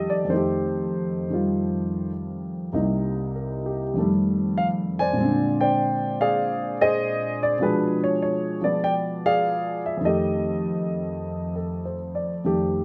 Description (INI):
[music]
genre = solo jazz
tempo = 99 BPM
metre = 4/4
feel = swing 68% on 8ths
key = F mixolydian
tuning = A4 = 441 Hz
[part]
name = dark baby grand piano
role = solo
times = 0.0-12.8 s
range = C2 to Ab5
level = -24 LUFS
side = equal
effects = none
[sound]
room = moderate large studio reverb, RT60 1.1 s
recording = none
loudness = -24 LUFS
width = mono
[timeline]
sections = 0.0-12.8 A section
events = none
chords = 0.0 F9; 2.7 Cm7; 4.0 F9; 5.2 Bb9; 7.6 Bdim7; 10.0 F9